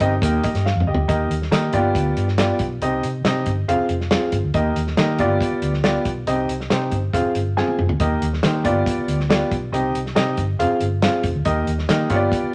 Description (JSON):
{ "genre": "uptempo 1960s-style soul", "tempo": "139 BPM", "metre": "4/4", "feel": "straight", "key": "unclear", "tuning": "A4 = 439 Hz", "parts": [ { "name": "clear concert grand piano", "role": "accompaniment", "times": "0.0-12.5 s", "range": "Bb3 to Ab5", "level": "-23 LUFS", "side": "equal", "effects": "none" }, { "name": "vintage muted fingered electric bass", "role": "bass", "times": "0.0-12.5 s", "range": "F1 to Eb3", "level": "-26 LUFS", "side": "equal", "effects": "none" }, { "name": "warm soul drum kit", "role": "drums", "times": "0.0-12.4 s", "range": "hi-hat, kick drum, snare drum, toms", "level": "-26 LUFS", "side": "equal", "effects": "none" } ], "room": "moderate studio reverb, RT60 0.9 s", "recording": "none", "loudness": "-20 LUFS", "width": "mono", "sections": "0.0-1.1 A section; 1.1-12.5 B section", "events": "drum fill 0.7-1.1, 7.6-8.0", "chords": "0.2 Eb; 1.7 G7; 2.8 Cm; 3.7 Fm; 4.5 Eb; 5.2 G7; 6.3 Cm; 7.1 Fm; 8.0 Eb; 8.6 G7; 9.7 Cm; 10.6 Fm; 11.5 Eb", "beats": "0.22 0.66 | 1.09 1.52 1.95 2.38 | 2.82 3.25 3.68 4.11 | 4.54 4.98 5.41 5.84 | 6.27 6.70 7.13 7.57 | 8.00 8.43 8.86 9.29 | 9.73 10.16 10.59 11.02 | 11.46 11.89 12.32" }